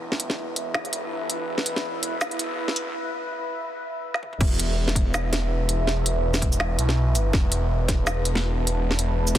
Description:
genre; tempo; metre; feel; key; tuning
half-time drum and bass; 164 BPM; 4/4; swing 56% on 16ths, half-time; unclear; A4 = 440 Hz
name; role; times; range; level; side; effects
deep dark ambient pad; sustained chords; 0.0-9.4 s; E4 to A5; -30 LUFS; equal; chorus, built-in reverb, sidechain pumping
phased detuned saw bass; bass; 0.0-9.4 s; E1 to B1; -25 LUFS; equal; phaser, high-pass filter
organic electronic drum kit; drums; 0.1-9.4 s; crash cymbal, hi-hat, shaker, snare drum, toms; -28 LUFS; equal; soft clipping on snare
electronic kick drum; drums; 4.4-9.4 s; none; -22 LUFS; equal; none
room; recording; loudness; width
light reverb, digital ambience; dense, heavily limited modern master, high-pass filter; -22 LUFS; side -12 dB against mid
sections
0.0-4.4 A section; 4.4-9.4 B section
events
build-up 0.0-4.4; filter sweep 0.0-4.4; break 2.9-4.4; drum fill 4.1; drop 4.4-9.4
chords
0.0 Em; 4.4 E5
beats
| 0.02 0.38 0.75 1.11 | 1.48 1.85 2.21 2.58 | 2.94 3.31 3.68 4.04 | 4.41 4.77 5.14 5.51 | 5.87 6.24 6.60 6.97 | 7.33 7.70 8.07 8.43 | 8.80 9.16

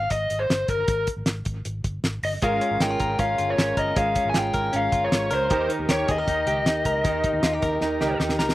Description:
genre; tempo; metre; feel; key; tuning
jangly indie pop; 156 BPM; 4/4; straight; unclear; A4 = 441 Hz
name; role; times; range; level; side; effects
lead guitar through a small cranked amp; melody; 0.0-8.2 s; Bb4 to Ab5; -24 LUFS; left 1 dB; overdrive
vintage muted fingered electric bass; bass; 0.0-8.5 s; G1 to Eb2; -31 LUFS; equal; none
cloth-damped thuddy drum kit; drums; 0.1-8.5 s; hi-hat, kick drum, snare drum; -26 LUFS; equal; none
fingerpicked plugged-in steel-string acoustic guitar; accompaniment; 2.4-8.5 s; Eb3 to Bb4; -33 LUFS; right 7 dB; slapback echo
warm analog keys; accompaniment; 2.4-8.5 s; Db4 to Bb4; -33 LUFS; right 4 dB; chorus, slapback echo
direct-recorded clean electric guitar; arpeggios; 2.4-8.5 s; Eb3 to Bb4; -27 LUFS; left 2 dB; none
room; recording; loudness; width
little or no reverb; recorded outdoors, with no room sound; -21 LUFS; side -16 dB against mid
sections
0.0-8.5 A section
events
drum fill 7.8-8.5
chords
0.0 N.C.; 2.4 Bbm; 5.5 Eb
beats
0.12 0.50 | 0.89 1.27 1.66 2.04 | 2.43 2.81 3.20 3.58 | 3.97 4.35 4.74 5.12 | 5.51 5.89 6.28 6.66 | 7.05 7.43 7.82 8.20

